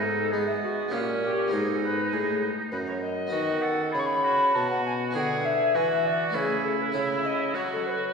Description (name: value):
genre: classical, baroque-style sonata movement with continuo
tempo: 100 BPM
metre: 3/4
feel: rubato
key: E major from 3.3 s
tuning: A4 = 440 Hz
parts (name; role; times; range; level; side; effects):
- mellow alto recorder; melody; 0.0-8.1 s; E#4 to C#6; -27 LUFS; left 3 dB; none
- clear oboe; second line; 0.0-8.1 s; B3 to A4; -30 LUFS; right 4 dB; none
- harpsichord; accompaniment; 0.0-8.1 s; F#2 to B4; -34 LUFS; right 1 dB; none
- mellow bassoon; bass; 0.0-8.1 s; F#2 to G#3; -30 LUFS; right 1 dB; none
room: wet concert hall reverb, RT60 1.7 s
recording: heard from further back in the room, nothing above 10.5 kHz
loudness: -24 LUFS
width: side -5 dB against mid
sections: 0.0-8.1 A section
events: none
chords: 0.0 G#m; 0.9 Gdim/Bb; 1.5 G#m; 3.3 B; 5.1 E7/D; 6.4 A/C#; 7.0 F#m7/C#